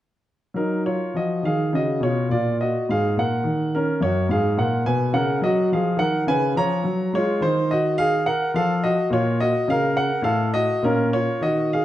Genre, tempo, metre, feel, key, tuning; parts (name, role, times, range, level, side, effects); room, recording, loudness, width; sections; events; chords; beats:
classical, baroque-style suite movement for grand piano; 106 BPM; 3/4; rubato; Eb minor, Bb minor from 7.4 s; A4 = 440 Hz
warm concert grand piano; solo; 0.5-11.8 s; Gb2 to Bb5; -19 LUFS; equal
wet recital hall reverb, RT60 1.5 s; dark, warm production; -19 LUFS; side -13 dB against mid
0.5-11.8 A section
0.5 Ebm; 2.3 Bb5; 3.4 Ebm; 4.0 Gb; 5.7 Db7; 6.8 Gb; 7.4 Ebm69; 8.5 F7; 9.1 Bbm; 10.2 F7/A; 10.8 Bbm
| 0.54 1.13 1.72 | 2.29 2.87 3.44 | 4.01 4.58 5.14 | 5.70 6.27 6.83 | 7.40 7.97 8.53 | 9.10 9.66 10.23 | 10.81 11.40